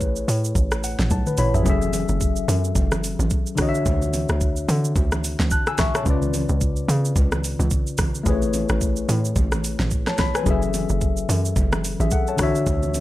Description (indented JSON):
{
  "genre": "amapiano",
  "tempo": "109 BPM",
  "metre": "4/4",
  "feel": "swing 58% on 16ths",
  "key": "F# minor",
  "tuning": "A4 = 440 Hz",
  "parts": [
    { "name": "tine electric piano", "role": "accompaniment", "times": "0.0-13.0 s", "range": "C#3 to F#6", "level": "-24 LUFS", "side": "left 3 dB", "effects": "lush chorus" },
    { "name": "hollow log drum bass", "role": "bass", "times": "0.0-13.0 s", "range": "F#1 to D3", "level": "-23 LUFS", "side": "equal", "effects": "none" },
    { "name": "smooth R&B drum kit", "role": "drums", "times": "0.0-13.0 s", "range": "hi-hat, kick drum, rim click, shaker, snare drum, toms", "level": "-23 LUFS", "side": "equal", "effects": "none" },
    { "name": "congas", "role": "percussion", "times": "1.7-13.0 s", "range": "none", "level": "-30 LUFS", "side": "right 3 dB", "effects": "none" }
  ],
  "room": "little or no reverb",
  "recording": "none",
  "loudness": "-19 LUFS",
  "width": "side -16 dB against mid",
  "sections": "0.0-13.0 A section",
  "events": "tine electric piano fill 0.6-1.7; drum fill 1.1-1.7",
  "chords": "0.0 Amaj9; 1.7 F#m7; 3.6 Dmaj9; 6.1 C#7b9; 8.3 Amaj9; 10.5 F#m7; 12.4 Dmaj9",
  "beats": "0.01 0.56 1.10 | 1.66 2.21 2.76 3.31 | 3.86 4.41 4.96 5.51 | 6.06 6.61 7.16 7.71 | 8.26 8.81 9.36 9.91 | 10.46 11.01 11.56 12.12 | 12.66"
}